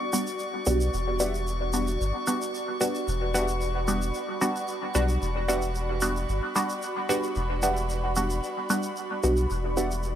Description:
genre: dub techno.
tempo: 112 BPM.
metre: 4/4.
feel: straight.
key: E dorian.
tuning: A4 = 445 Hz.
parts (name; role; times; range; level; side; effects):
airy breathy pad; sustained chords; 0.0-10.2 s; F#4 to B5; -35 LUFS; right 1 dB; chorus.
filtered dub chord stab; stabs; 0.0-10.2 s; G3 to F#4; -28 LUFS; equal; chorus, phaser, dub echo.
drifting glass-harmonics texture; texture; 0.0-10.2 s; C#6; -38 LUFS; left 3 dB; chorus, built-in reverb.
tube shaker; percussion; 0.1-10.1 s; none; -36 LUFS; right 2 dB; none.
soft dub sub bass; bass; 0.7-10.2 s; E1 to B1; -28 LUFS; equal; none.
warbly lo-fi synth keys; riff; 1.2-9.9 s; G4 to F#5; -42 LUFS; equal; none.
room: light reverb.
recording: none.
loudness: -25 LUFS.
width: side -10 dB against mid.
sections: 0.0-10.2 A section.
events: none.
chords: 0.0 Em9.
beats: 0.40 | 0.93 1.47 2.00 2.54 | 3.08 3.61 4.15 4.68 | 5.22 5.75 6.29 6.83 | 7.36 7.90 8.43 8.97 | 9.51 10.04.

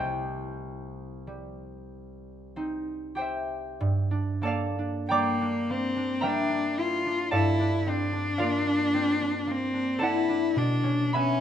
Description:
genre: classical, impressionist duo for cello and harp.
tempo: 44-56 BPM.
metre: 3/4.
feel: rubato.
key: G minor.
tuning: A4 = 440 Hz.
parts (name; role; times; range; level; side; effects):
concert harp; accompaniment; 0.0-11.4 s; C2 to D6; -28 LUFS; right 1 dB; none.
rich cello; melody; 5.1-11.4 s; Bb3 to F4; -26 LUFS; left 2 dB; none.
room: moderate scoring stage reverb, RT60 1.9 s.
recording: close, detailed microphones.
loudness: -25 LUFS.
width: side -9 dB against mid.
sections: 0.0-3.8 A section; 3.8-11.4 B section.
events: none.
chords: 0.0 Cm6; 3.8 Gm9; 7.3 Bbmaj9/G; 10.6 Bm9.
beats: 1.28 2.56 | 3.81 5.11 6.25 | 7.34 8.43 9.51 | 10.58.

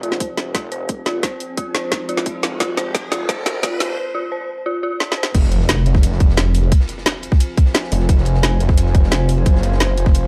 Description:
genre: dark technical drum and bass.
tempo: 175 BPM.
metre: 4/4.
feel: straight.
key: F minor.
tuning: A4 = 440 Hz.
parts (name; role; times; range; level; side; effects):
deep dark ambient pad; sustained chords; 1.2-10.3 s; F4 to Ab5; -32 LUFS; equal; chorus, built-in reverb, sidechain pumping.
dark detuned synth bell; arpeggios; 0.0-5.3 s; F4 to C5; -27 LUFS; equal; chorus, tremolo, sidechain pumping, low-pass filter, delay.
snarling distorted saw bass; bass; 0.0-10.3 s; F1 to Gb1; -21 LUFS; equal; distortion, overdrive, sidechain pumping, high-pass filter.
drum and bass drum kit; drums; 0.0-10.2 s; crash cymbal, hi-hat, snare drum; -23 LUFS; equal; overdrive.
riser and impact; sound effects; 1.5-6.7 s; none; -30 LUFS; equal; none.
electronic kick drum; drums; 0.2-10.1 s; none; -16 LUFS; equal; overdrive, high-pass filter on kick.
crunchy breakbeat drum kit; drums; 5.4-10.2 s; ride cymbal, snare drum; -37 LUFS; equal; high-pass filter on cymbals, high-pass filter on snare, high-pass filter on room.
room: light reverb.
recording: dark, warm production, high-pass filter.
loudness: -18 LUFS.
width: mono.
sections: 0.0-5.3 A section; 5.3-10.3 B section.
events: build-up 0.0-5.3; drum fill 0.0-4.0, 5.0-5.3; filter sweep on ambient pad 0.0-5.3; filter sweep on synth bell 0.0-5.3; riser 1.5-4.0; drop 5.3-10.3; impact 5.3-6.7.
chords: 0.0 Fm.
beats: 0.20 0.55 0.89 | 1.23 1.57 1.92 2.26 | 2.60 2.95 3.29 3.63 | 3.98 4.32 4.66 5.00 | 5.35 5.69 6.03 6.38 | 6.72 7.06 7.40 7.75 | 8.09 8.43 8.78 9.12 | 9.46 9.80 10.15.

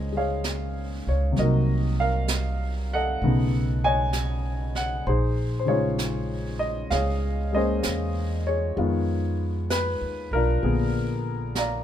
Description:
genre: jazz ballad.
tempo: 65 BPM.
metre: 4/4.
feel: swing 67% on 8ths.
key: Bb minor.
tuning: A4 = 440 Hz.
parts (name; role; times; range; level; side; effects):
warm upright piano; accompaniment; 0.0-11.8 s; C3 to Bb5; -26 LUFS; left 2 dB; none.
upright bass; bass; 0.0-11.8 s; Bb1 to F2; -26 LUFS; right 1 dB; none.
jazz brush drum kit; drums; 0.4-11.8 s; brushed snare drum, hi-hat, snare drum; -34 LUFS; right 4 dB; none.
room: little or no reverb.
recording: minimal, uncompressed stereo recording.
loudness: -23 LUFS.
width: side -10 dB against mid.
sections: 0.0-11.8 A section.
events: none.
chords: 0.0 Bbm9; 1.4 Cm7b5; 3.2 B9; 5.1 Bbm11; 8.8 Fm7b5; 10.6 Bb7b9.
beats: 0.45 | 1.37 2.29 3.22 4.14 | 5.06 5.99 6.91 7.84 | 8.77 9.70 10.63 11.56.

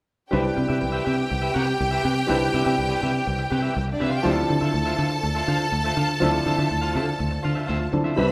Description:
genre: disco.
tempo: 122 BPM.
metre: 4/4.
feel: straight.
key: C major.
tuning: A4 = 441 Hz.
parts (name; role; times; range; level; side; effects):
clear studio string section; second line; 0.3-8.3 s; D4 to B5; -29 LUFS; equal; none.
electric guitar at the edge of break-up; accompaniment; 0.3-8.3 s; F4 to G5; -33 LUFS; equal; none.
warm baby grand piano; accompaniment; 0.3-8.3 s; F3 to B4; -30 LUFS; equal; none.
fingered electric bass; bass; 0.3-8.3 s; C2 to D3; -27 LUFS; equal; none.
tonewheel organ; sustained chords; 8.2-8.3 s; C3 to B4; -25 LUFS; equal; chorus vibrato, fast rotary speaker.
room: wet large studio reverb, RT60 1.3 s.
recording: band playing live in one room.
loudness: -23 LUFS.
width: mono.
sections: 0.3-8.3 A section.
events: none.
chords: 0.3 Cmaj7; 4.3 Dm9.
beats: | 0.32 0.81 1.31 1.80 | 2.29 2.78 3.27 3.76 | 4.25 4.74 5.23 5.72 | 6.21 6.71 7.20 7.69 | 8.18.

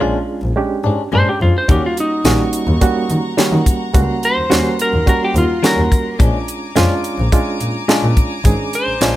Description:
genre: straight-eighth soul blues.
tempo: 106 BPM.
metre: 4/4.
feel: straight.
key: unclear.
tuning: A4 = 440 Hz.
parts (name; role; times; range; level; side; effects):
barky reed electric piano; accompaniment; 0.0-9.2 s; G3 to Ab4; -19 LUFS; right 3 dB; overdrive, fast tremolo.
direct-recorded clean electric guitar; stabs; 0.0-9.2 s; Bb2 to F#4; -22 LUFS; left 5 dB; spring reverb.
warm double bass; bass; 0.0-9.1 s; Ab1 to Eb3; -18 LUFS; equal; none.
clean lap steel guitar; melody; 1.1-9.2 s; Eb4 to C5; -18 LUFS; left 1 dB; plate reverb.
rich studio string section; sustained chords; 1.7-9.2 s; F#5 to D6; -28 LUFS; left 3 dB; none.
tight funk drum kit; drums; 1.7-9.1 s; hi-hat, kick drum, snare drum; -15 LUFS; equal; none.
room: light reverb.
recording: none.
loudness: -13 LUFS.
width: side -14 dB against mid.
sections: 0.0-9.2 A section.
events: none.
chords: 0.0 Bb7#9; 1.7 Eb7#9; 6.2 Bb7#9.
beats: 0.00 0.57 1.13 | 1.69 2.25 2.82 3.38 | 3.94 4.51 5.07 5.63 | 6.20 6.76 7.32 7.89 | 8.45 9.01.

